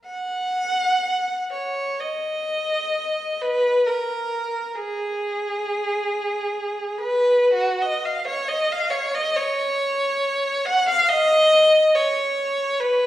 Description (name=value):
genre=classical, free, expressive piece for unaccompanied violin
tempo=54-71 BPM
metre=4/4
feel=rubato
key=Eb minor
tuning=A4 = 440 Hz
part: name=warm violin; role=solo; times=0.0-13.1 s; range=Gb4 to Gb5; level=-19 LUFS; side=equal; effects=none
room=wet recital hall reverb, RT60 1.5 s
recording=heard from further back in the room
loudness=-19 LUFS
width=side -13 dB against mid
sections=0.1-13.1 A section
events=none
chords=none